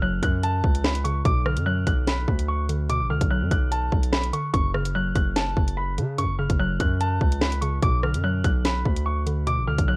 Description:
hip hop, drill; 146 BPM; 4/4; half-time; A4 = 440 Hz
dark baby grand piano; melody; 0.0-10.0 s; A5 to F#6; -28 LUFS; equal; low-pass filter
mallet-like synth pluck; accompaniment; 0.0-10.0 s; F#2 to F#3; -29 LUFS; equal; chorus, low-pass filter
hard-hitting 808-style bass; bass; 0.0-10.0 s; F#1 to C#3; -25 LUFS; equal
drill drum kit; drums; 0.2-9.9 s; hi-hat, kick drum, rim click, snare drum; -23 LUFS; equal
little or no reverb; worn, warbling old tape, cassette tape, warbly pitch drift; -21 LUFS; side -27 dB against mid
0.0-10.0 A section
0.0 F#m; 1.3 Bm; 4.5 F#m; 7.8 Bm
0.02 0.43 0.84 | 1.25 1.66 2.07 2.48 | 2.90 3.31 3.72 4.13 | 4.54 4.95 5.36 5.77 | 6.18 6.59 7.01 7.42 | 7.83 8.24 8.65 9.06 | 9.47 9.88

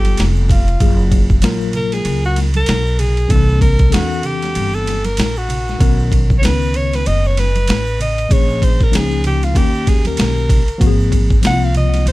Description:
hip hop, jazz-hop; 96 BPM; 4/4; swing 58% on 16ths; A4 = 435 Hz
breathy alto saxophone; melody; 0.0-12.1 s; F4 to Gb5; -21 LUFS; equal; ping-pong delay
tine electric piano; accompaniment; 0.0-12.1 s; D#3 to B4; -21 LUFS; left 4 dB; medium stereo tremolo
upright bass; bass; 0.0-12.1 s; F1 to E2; -17 LUFS; equal
boom bap sampler-style drum kit; drums; 0.0-12.1 s; hi-hat, kick drum, ride cymbal, snare drum; -16 LUFS; equal; overdrive
congas and egg shaker; percussion; 0.0-12.1 s; -30 LUFS; right 3 dB
little or no reverb; dark, warm production; -12 LUFS; side -18 dB against mid
0.0-12.1 A section
alto saxophone solo 0.0-12.1; break 4.6-5.8
0.0 G9; 0.8 Gbmaj9; 3.3 C9; 5.8 Bmaj9; 8.3 Bbm7; 9.6 Eb7; 10.8 Ab69
0.18 | 0.81 1.43 2.06 2.68 | 3.31 3.93 4.56 5.18 | 5.81 6.43 7.06 7.68 | 8.31 8.93 9.56 10.18 | 10.81 11.43 12.06

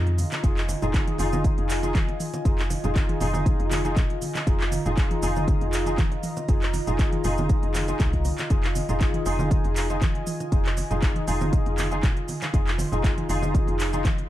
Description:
afro house; 119 BPM; 4/4; swing 53% on 16ths; F minor pentatonic; A4 = 441 Hz
warm analog pad; sustained chords; 0.0-14.3 s; F4 to C6; -33 LUFS; right 1 dB; chorus, sidechain pumping
woody FM bass; bass; 0.0-14.1 s; Eb1 to F2; -28 LUFS; equal; sidechain pumping
afro-pop drum kit; drums; 0.1-14.3 s; handclaps, hi-hat, shaker, toms; -31 LUFS; equal; studio reverb
congas; percussion; 0.1-14.3 s; -31 LUFS; right 2 dB
barky tine electric piano; stabs; 0.4-14.1 s; Eb4 to Ab4; -30 LUFS; left 2 dB; ensemble chorus, sidechain pumping, tape echo
electronic kick drum; drums; 0.4-14.2 s; -23 LUFS; equal; studio reverb
little or no reverb; dark, warm production; -22 LUFS; side -14 dB against mid
0.0-14.3 A section
break 0.0-0.4
0.0 Fm7
| 0.44 0.94 1.45 1.95 | 2.45 2.96 3.46 3.97 | 4.47 4.97 5.48 5.98 | 6.49 6.99 7.50 8.00 | 8.50 9.01 9.51 10.02 | 10.52 11.03 11.53 12.03 | 12.54 13.04 13.55 14.05

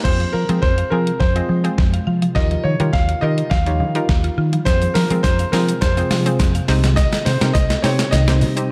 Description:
dance-pop; 104 BPM; 4/4; straight; F minor; A4 = 440 Hz
clear concert grand piano; melody; 0.0-8.7 s; Bb4 to F5; -26 LUFS; equal; tape echo
hollow square pluck; accompaniment; 0.1-8.7 s; C4 to Eb5; -28 LUFS; equal; chorus, sidechain pumping
glassy FM pad; sustained chords; 1.0-8.7 s; C3 to F4; -30 LUFS; equal
mallet-like synth pluck; arpeggios; 0.1-8.5 s; Eb3 to Ab5; -32 LUFS; equal
vintage muted fingered electric bass; bass; 0.1-8.6 s; C2 to F3; -21 LUFS; equal; sidechain pumping
gated 80s digital drum machine; drums; 0.1-8.7 s; crash cymbal, hi-hat, kick drum, shaker, snare drum; -22 LUFS; equal; gated reverb, gated reverb snare
tube shaker; percussion; 4.7-8.7 s; -46 LUFS; equal
light reverb, digital ambience; dark, warm production; -17 LUFS; mono
0.1-8.7 A section
build-up 0.1-8.7; drum fill 0.1-8.7
0.1 Fm; 2.4 Ebadd9; 4.7 Fm; 6.7 Cm
| 0.05 0.63 1.21 1.78 | 2.36 2.94 3.51 4.09 | 4.67 5.24 5.82 6.40 | 6.97 7.55 8.13 8.71

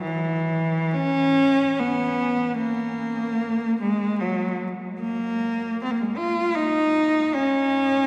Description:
classical, free, expressive piece for unaccompanied cello; 61-78 BPM; 3/4; rubato; A4 = 435 Hz
rich cello; solo; 0.0-8.1 s; E3 to F4; -23 LUFS; equal
wet cathedral reverb, RT60 5.4 s; heard from further back in the room, vinyl crackle; -23 LUFS; mono
0.0-8.1 A section
| 0.03 0.95 1.80 | 2.60 3.40 4.20 | 4.99 5.79 6.57 | 7.34

